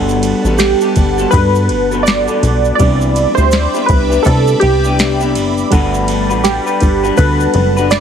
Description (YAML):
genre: indie pop, bedroom pop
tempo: 82 BPM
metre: 4/4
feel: swing 60% on 16ths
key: G major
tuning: A4 = 440 Hz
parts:
  - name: electric guitar through a small old amp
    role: accompaniment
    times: 0.0-8.0 s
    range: E3 to B4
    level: -19 LUFS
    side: left 6 dB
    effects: lush chorus, warbly pitch drift
  - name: reed electric piano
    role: accompaniment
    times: 0.0-8.0 s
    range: G3 to F#5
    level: -21 LUFS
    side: right 4 dB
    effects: cassette tape
  - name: phased analog pad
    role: sustained chords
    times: 0.0-8.0 s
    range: G3 to D6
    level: -22 LUFS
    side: left 1 dB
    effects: phaser, chorus
  - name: plucky analog bass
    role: bass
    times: 0.0-8.0 s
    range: F#1 to C3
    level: -16 LUFS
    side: equal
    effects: none
  - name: tube shaker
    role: percussion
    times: 0.1-8.0 s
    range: none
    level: -30 LUFS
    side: right 8 dB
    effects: none
  - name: soft vintage rhythm box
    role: drums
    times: 0.2-8.0 s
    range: kick drum, ride cymbal, snare drum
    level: -18 LUFS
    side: equal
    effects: none
  - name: warm analog keys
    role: melody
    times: 0.6-8.0 s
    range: G4 to D5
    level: -15 LUFS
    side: right 2 dB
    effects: analog chorus, slapback echo
room: light reverb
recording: heavily compressed radio sound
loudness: -10 LUFS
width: side -8 dB against mid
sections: 0.0-8.0 A section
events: none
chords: 0.0 Gmaj9; 2.8 Cmaj9; 5.7 Gmaj9